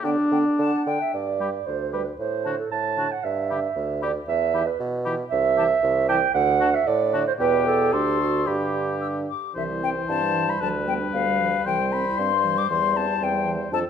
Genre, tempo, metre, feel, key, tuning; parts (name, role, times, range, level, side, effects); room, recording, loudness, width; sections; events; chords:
quick classical-period movement for wind quintet; 115 BPM; 2/4; straight; G major, C major from 9.6 s; A4 = 440 Hz
silver concert flute; melody; 0.0-13.8 s; E5 to E6; -26 LUFS; left 9 dB
warm oboe; second line; 0.0-13.8 s; D4 to C5; -31 LUFS; left 4 dB
warm French horn; accompaniment; 0.0-13.8 s; B2 to D4; -29 LUFS; equal
mellow bassoon; bass; 0.0-13.8 s; C2 to D3; -27 LUFS; right 2 dB
dark clarinet; accompaniment; 0.1-13.8 s; E3 to A5; -25 LUFS; right 8 dB
moderate recital hall reverb, RT60 1.6 s; -21 LUFS; side -8 dB against mid
0.0-1.1 A section; 1.1-9.6 B section; 9.6-13.9 A section
0.0 G/D (rootless); 0.6 D; 1.1 G5; 2.2 D/A; 3.2 G5; 4.3 E5; 5.3 Am7/C (rootless); 6.3 D; 7.4 Em; 7.9 D7; 8.5 G; 9.6 C; 10.6 G7/D; 11.7 C; 12.7 C/E